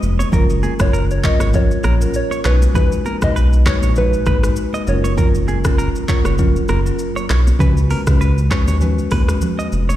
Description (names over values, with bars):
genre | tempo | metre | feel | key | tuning
afrobeats | 99 BPM | 4/4 | swing 55% on 16ths | F# major | A4 = 440 Hz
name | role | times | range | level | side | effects
round analog bass | bass | 0.0-9.9 s | E#1 to D#2 | -16 LUFS | equal | none
deep house drum kit | drums | 0.0-10.0 s | handclaps, hi-hat, kick drum, rim click, shaker | -19 LUFS | equal | none
direct-recorded clean electric guitar | riff | 0.2-10.0 s | G#4 to D#5 | -27 LUFS | right 4 dB | ping-pong delay
congas | percussion | 0.2-10.0 s | none | -26 LUFS | right 4 dB | none
marimba with medium mallets | accompaniment | 0.3-9.5 s | F#3 to B4 | -22 LUFS | left 3 dB | none
soft struck synth lead | melody | 0.8-5.0 s | B4 to D#5 | -24 LUFS | equal | chorus, ping-pong delay
room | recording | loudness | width
digital ambience | played on a big sound system in a bare room, large studio reverb | -14 LUFS | side -13 dB against mid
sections
0.0-10.0 A section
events
none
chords
0.3 F#maj7; 2.5 B6; 4.9 F#maj7; 7.6 C#7sus4